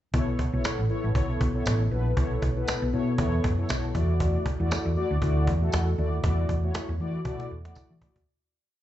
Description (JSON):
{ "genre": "early-eighties boogie funk", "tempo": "118 BPM", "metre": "4/4", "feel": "swing 56% on 16ths", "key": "B minor", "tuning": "A4 = 441 Hz", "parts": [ { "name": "mellow synth brass", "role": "accompaniment", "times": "0.1-8.2 s", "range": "A3 to D5", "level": "-30 LUFS", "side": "left 2 dB", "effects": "chorus, slapback echo" }, { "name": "hollow-body short-scale fingered electric bass", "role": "bass", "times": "0.1-8.2 s", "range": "A1 to E3", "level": "-26 LUFS", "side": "equal", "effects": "none" }, { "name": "cajon", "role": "drums", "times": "0.1-8.3 s", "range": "none", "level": "-30 LUFS", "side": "right 1 dB", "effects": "none" }, { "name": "tambourine", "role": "percussion", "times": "0.6-7.9 s", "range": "none", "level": "-42 LUFS", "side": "right 3 dB", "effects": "none" } ], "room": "little or no reverb", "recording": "live gig heard through the venue's PA, club reverb, nothing above 7.9 kHz", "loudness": "-24 LUFS", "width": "side -13 dB against mid", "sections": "0.1-8.3 verse", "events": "fade-out 6.2-8.3; drum fill 7.3-8.3", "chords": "0.1 B9sus4; 4.0 E9sus4", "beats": "| 0.14 0.65 1.15 1.66 | 2.17 2.68 3.19 3.69 | 4.20 4.71 5.22 5.73 | 6.24 6.75 7.25 7.76" }